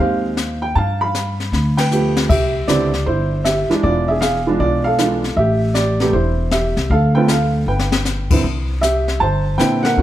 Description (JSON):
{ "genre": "jazz piano trio", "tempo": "156 BPM", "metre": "4/4", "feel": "swing 66% on 8ths", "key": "C major", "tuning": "A4 = 440 Hz", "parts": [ { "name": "warm upright piano", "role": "melody", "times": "0.0-10.0 s", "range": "C3 to B5", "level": "-18 LUFS", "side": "right 2 dB", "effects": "none" }, { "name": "upright bass", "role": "bass", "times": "0.0-10.0 s", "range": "E1 to Bb2", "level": "-19 LUFS", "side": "equal", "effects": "none" }, { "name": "jazz brush drum kit", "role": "drums", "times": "0.4-10.0 s", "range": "brushed snare drum, crash cymbal, hi-hat, kick drum, ride cymbal, snare drum", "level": "-21 LUFS", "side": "left 3 dB", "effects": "none" } ], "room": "moderate recital hall reverb, RT60 1.5 s", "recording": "none", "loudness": "-15 LUFS", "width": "side -13 dB against mid", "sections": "0.0-2.3 A section; 2.3-10.0 B section", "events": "drum fill 1.5-2.3, 7.7-8.1; band accent 1.7", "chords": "0.0 Abmaj7; 0.8 G9; 2.3 Cadd9; 3.8 E7b9; 5.4 Am7; 6.9 Dm; 7.7 G; 8.4 Cmaj9" }